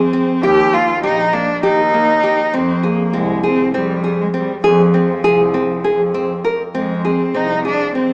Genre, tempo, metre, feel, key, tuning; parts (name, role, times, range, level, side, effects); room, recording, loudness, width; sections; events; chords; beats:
contemporary instrumental, chamber music in an uneven meter; 200 BPM (eighths); 7/8; straight; F dorian; A4 = 439 Hz
warm cello; melody; 0.0-8.1 s; F3 to G4; -20 LUFS; equal
rich double bass; bass; 0.0-8.1 s; Bb1 to F2; -23 LUFS; equal
nylon-string guitar; arpeggios; 0.1-8.1 s; Bb3 to Bb4; -20 LUFS; equal
moderate recital hall reverb, RT60 1.7 s; small speaker sound; -16 LUFS; mono
0.0-6.7 A section; 6.7-8.1 B section
0.4 Eb; 2.5 Fm
0.13 | 0.43 0.73 1.04 1.34 1.64 1.94 2.24 | 2.54 2.84 3.14 3.44 3.74 4.04 4.34 | 4.64 4.94 5.24 5.54 5.84 6.15 6.45 | 6.75 7.05 7.35 7.65 7.95